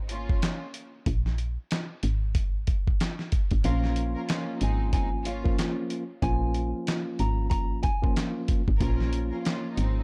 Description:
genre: hip hop, boom-bap hip-hop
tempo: 93 BPM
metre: 4/4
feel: swing 57% on 16ths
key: Bb minor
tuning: A4 = 439 Hz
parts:
  - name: woody FM bass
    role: bass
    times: 0.0-10.0 s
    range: Ab1 to Bb1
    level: -30 LUFS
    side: equal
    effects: none
  - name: rich studio string section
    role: stabs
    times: 0.1-10.0 s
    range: Ab3 to Bb4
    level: -40 LUFS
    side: equal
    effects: high-pass filter, low-pass filter, tape echo
  - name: dusty soul sampler-style drum kit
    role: drums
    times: 0.1-9.9 s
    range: handclaps, hi-hat, kick drum, snare drum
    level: -29 LUFS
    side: equal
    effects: none
  - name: nylon-string guitar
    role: melody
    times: 3.6-8.1 s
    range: F5 to Bb5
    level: -38 LUFS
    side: equal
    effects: high-pass filter, low-pass filter, tape echo
  - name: mellow tine electric piano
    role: accompaniment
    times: 3.6-10.0 s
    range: F3 to F4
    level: -35 LUFS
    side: equal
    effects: overdrive, cassette tape, high-pass filter, low-pass filter
room: little or no reverb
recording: dark, warm production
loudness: -28 LUFS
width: mono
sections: 0.0-10.0 A section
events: break 0.0-3.6; kick muted 3.6-4.3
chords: 0.0 Bbm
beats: 0.42 | 1.06 1.71 2.35 3.00 | 3.65 4.29 4.94 5.58 | 6.23 6.87 7.52 8.16 | 8.81 9.45

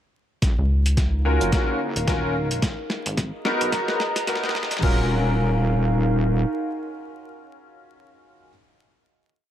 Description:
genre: glitch hop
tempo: 109 BPM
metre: 4/4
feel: swing 58% on 16ths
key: Eb minor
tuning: A4 = 440 Hz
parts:
  - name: wobble bass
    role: bass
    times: 0.4-6.4 s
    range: Eb1 to Db2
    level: -22 LUFS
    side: equal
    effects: chorus, overdrive, high-pass filter
  - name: boom bap sampler-style drum kit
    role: drums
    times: 0.4-5.0 s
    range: crash cymbal, hi-hat, snare drum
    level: -29 LUFS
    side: equal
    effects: overdrive
  - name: electronic kick drum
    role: drums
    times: 0.4-5.0 s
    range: none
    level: -22 LUFS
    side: equal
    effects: overdrive
  - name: warbly tape-like pad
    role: texture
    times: 1.1-7.8 s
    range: Eb4 to Bb5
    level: -30 LUFS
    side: equal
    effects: chorus, built-in reverb, sidechain pumping
  - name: rubbery square bass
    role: bass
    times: 0.6-4.7 s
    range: Eb1 to Eb2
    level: -23 LUFS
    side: equal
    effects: tube saturation
  - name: clear baby grand piano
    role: stabs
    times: 1.2-8.5 s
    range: Cb4 to Bb4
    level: -26 LUFS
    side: left 1 dB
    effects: analog chorus, sidechain pumping, low-pass filter, ping-pong delay
room: moderate plate reverb, RT60 2.3 s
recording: dreamy mix soaked in reverb, vinyl crackle, high-pass filter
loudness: -20 LUFS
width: side -11 dB against mid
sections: 0.4-4.8 build; 4.8-7.0 final chord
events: build-up 0.4-4.8; drum fill 0.4-4.8; filter sweep 0.4-4.8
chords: 0.4 Ebm7; 2.6 Abm7; 4.8 Ebm7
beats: | 0.43 0.98 1.53 2.08 | 2.63 3.18 3.73 4.28 | 4.83 5.38 5.93 6.48

